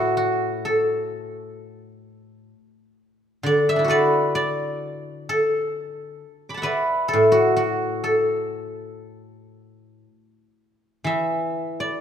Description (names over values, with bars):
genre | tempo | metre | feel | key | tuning
chinese traditional, Chinese solo plucked strings | 58-66 BPM | 4/4 | rubato | D gong mode | A4 = 439 Hz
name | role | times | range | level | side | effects
guzheng | solo | 0.0-12.0 s | A2 to D6 | -20 LUFS | equal | none
room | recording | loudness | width
moderate concert hall reverb, RT60 2.0 s | minimal, uncompressed stereo recording | -19 LUFS | side -8 dB against mid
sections
0.0-12.0 A section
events
none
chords
none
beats
0.66 1.58 2.52 | 3.46 4.38 5.30 6.22 | 7.15 8.07 9.03 10.04 | 11.06